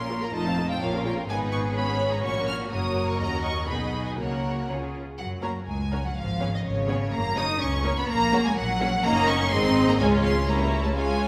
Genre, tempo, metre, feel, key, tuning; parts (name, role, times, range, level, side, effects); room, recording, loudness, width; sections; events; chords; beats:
quick classical-period movement for string orchestra; 125 BPM; 2/4; straight; F# major; A4 = 440 Hz
rich studio violin section; melody; 0.0-11.3 s; C#5 to E#6; -32 LUFS; equal
rich studio violin section; second line; 0.0-11.3 s; Eb4 to F5; -34 LUFS; equal
rich studio viola section; accompaniment; 0.0-11.3 s; G3 to Bb4; -32 LUFS; equal
clear studio double bass section; bass; 0.0-11.3 s; F1 to F#2; -33 LUFS; equal
rich studio cello section; bass; 0.0-11.3 s; D#2 to D#4; -31 LUFS; equal
wet recital hall reverb, RT60 1.8 s; recorded in a church or concert hall; -25 LUFS; mono
0.0-5.2 A section; 5.2-11.3 B section
0.3 F7; 0.8 Bbm; 1.3 C#5/G#; 2.2 F#/A#; 2.7 F#; 3.2 D#m7; 3.7 G#m/B; 4.2 F#/C#; 4.7 C#; 5.2 F#; 6.2 C#7/G#; 7.1 F#; 8.1 F#/A#; 9.0 Ebm7/Gb; 9.5 Ab; 10.0 Db; 10.5 Dbdim7
| 0.34 0.81 | 1.28 1.76 | 2.24 2.72 | 3.20 3.69 | 4.19 4.69 | 5.18 5.67 | 6.16 6.64 | 7.12 7.61 | 8.08 8.56 | 9.04 9.52 | 9.99 10.47 | 10.95